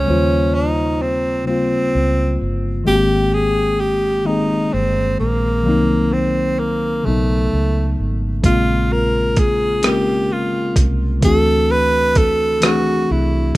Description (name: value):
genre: slow six-eight R&B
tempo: 43 BPM (dotted quarters)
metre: 6/8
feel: straight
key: unclear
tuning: A4 = 440 Hz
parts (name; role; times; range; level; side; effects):
- breathy tenor saxophone; melody; 0.0-13.6 s; A3 to B4; -18 LUFS; right 1 dB; none
- mellow tine electric piano; accompaniment; 0.0-13.6 s; Db3 to G5; -20 LUFS; left 2 dB; none
- vintage muted fingered electric bass; bass; 0.0-13.5 s; G1 to Eb2; -21 LUFS; right 1 dB; none
- dusty soul sampler-style drum kit; drums; 8.4-13.6 s; hi-hat, kick drum, rim click; -16 LUFS; right 1 dB; overdrive
room: digital ambience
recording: rough home demo mix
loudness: -15 LUFS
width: side -18 dB against mid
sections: 0.0-13.6 A section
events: none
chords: 0.1 Eb13; 2.9 Abmaj9; 5.6 Cm7b5; 7.0 B9; 8.4 Bbm7; 11.2 D9